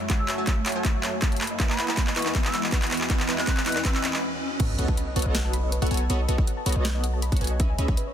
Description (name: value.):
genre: future bass.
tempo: 160 BPM.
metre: 4/4.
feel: half-time.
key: unclear.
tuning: A4 = 440 Hz.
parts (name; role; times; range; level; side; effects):
shimmering ambient pad; sustained chords; 0.0-4.2 s; E2 to E5; -37 LUFS; equal; chorus, built-in reverb, phaser, sidechain pumping.
soft round pluck; arpeggios; 0.0-8.1 s; B4 to C#6; -37 LUFS; left 1 dB; chorus, sidechain pumping, tape echo.
riser and sub drop; sound effects; 0.0-6.1 s; none; -32 LUFS; right 2 dB; none.
supersaw stab; riff; 0.1-8.0 s; B3 to C#6; -31 LUFS; equal; sidechain pumping, tape echo.
electronic kick drum; drums; 0.1-8.0 s; none; -25 LUFS; equal; none.
trap drum kit; drums; 0.1-8.1 s; crash cymbal, handclaps, hi-hat, snare drum; -29 LUFS; equal; high-pass filter on snare, high-pass filter on hats, high-pass filter on cymbals, high-pass filter on room.
mellow hollow concert flute; melody; 0.2-4.0 s; B5 to F#6; -35 LUFS; equal; sidechain pumping, tape echo.
warm 808-style bass; bass; 4.6-8.0 s; B1 to C#2; -25 LUFS; equal; sidechain pumping.
room: digital ambience.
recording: dense, heavily limited modern master.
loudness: -22 LUFS.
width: side -10 dB against mid.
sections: 0.0-4.6 A section; 4.6-8.1 B section.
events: build-up 0.0-4.6; drum fill 0.0-4.2; riser 0.0-4.6; stop 4.2-4.6; drop 4.6-8.1; impact 4.6-6.1.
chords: 0.0 F#m7; 1.4 Emaj7; 4.6 B7; 7.6 C#m7.